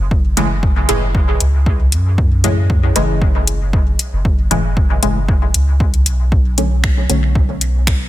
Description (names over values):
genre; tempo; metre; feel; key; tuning
dub techno; 116 BPM; 4/4; straight; unclear; A4 = 441 Hz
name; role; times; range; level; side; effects
filtered dub chord stab; stabs; 0.0-8.1 s; A2 to C#4; -20 LUFS; equal; chorus, phaser, sidechain pumping, dub echo
soft dub sub bass; bass; 0.0-8.1 s; F#1 to F#2; -16 LUFS; equal; sidechain pumping
electronic kick drum; drums; 0.1-8.0 s; none; -16 LUFS; equal; overdrive
deep house drum kit; drums; 0.4-8.0 s; finger snaps, hi-hat; -19 LUFS; left 2 dB; overdrive, soft clipping on snare
deep dark ambient pad; sustained chords; 7.6-8.1 s; B3 to B4; -40 LUFS; left 4 dB; none
room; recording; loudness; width
digital ambience; dense, heavily limited modern master; -12 LUFS; side -14 dB against mid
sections
0.0-8.1 A section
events
none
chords
0.0 F#m7; 6.3 Bm7